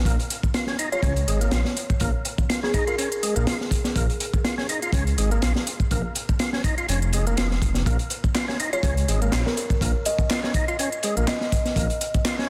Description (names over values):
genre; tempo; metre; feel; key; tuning
breakbeat, breaks; 123 BPM; 4/4; swing 54% on 16ths; Bb minor; A4 = 440 Hz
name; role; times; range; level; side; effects
dark detuned saw bass; bass; 0.0-11.9 s; F1 to Db2; -26 LUFS; equal; none
percussive tonewheel organ; riff; 0.1-12.5 s; Ab3 to F4; -32 LUFS; equal; overdrive, fast rotary speaker, tape echo
crunchy breakbeat drum kit; drums; 0.1-12.5 s; hi-hat, kick drum, snare drum; -27 LUFS; equal; none
garage drum kit; drums; 0.1-12.4 s; handclaps, hi-hat; -35 LUFS; equal; none
buzzing kalimba; melody; 0.9-3.4, 8.7-11.7 s; Ab4 to Eb5; -32 LUFS; equal; old record sound, vintage 12-bit sampler grit, tape echo
room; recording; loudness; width
light reverb, small room ambience; dense, heavily limited modern master; -24 LUFS; mono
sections
0.0-12.5 A section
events
none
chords
0.0 Bbm7